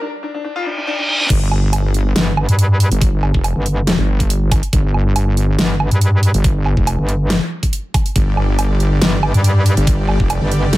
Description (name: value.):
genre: heavy wobble dubstep.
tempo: 140 BPM.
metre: 4/4.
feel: swing 53% on 16ths, half-time.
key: unclear.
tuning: A4 = 440 Hz.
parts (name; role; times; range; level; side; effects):
bright concert grand piano; melody; 0.0-1.3 s; D4 to F4; -24 LUFS; left 3 dB; ping-pong delay.
reverse cymbal; sound effects; 0.6-1.3 s; none; -19 LUFS; right 1 dB; none.
wobble bass; bass; 1.3-10.4 s; F1 to G1; -15 LUFS; equal; chorus, overdrive.
dubstep drum kit; drums; 1.3-10.8 s; crash cymbal, hi-hat, snare drum, woodblock; -20 LUFS; equal; overdrive.
electronic kick drum; drums; 1.3-10.3 s; none; -16 LUFS; equal; overdrive.
metallic wobble bass; bass; 2.2-10.8 s; G1 to G2; -14 LUFS; equal; chorus, overdrive.
supersaw chords; sustained chords; 8.2-10.8 s; D3 to D5; -24 LUFS; equal; vintage 12-bit sampler grit, sidechain pumping.
room: digital ambience.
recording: high-pass filter.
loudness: -13 LUFS.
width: side -17 dB against mid.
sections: 0.0-1.3 A section; 1.3-10.8 B section.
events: break 0.0-1.3; build-up 0.0-1.3; filter sweep 0.0-1.3; reverse cymbal 0.6-1.3; drop 1.3-10.8.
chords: 0.0 N.C.; 1.3 G5.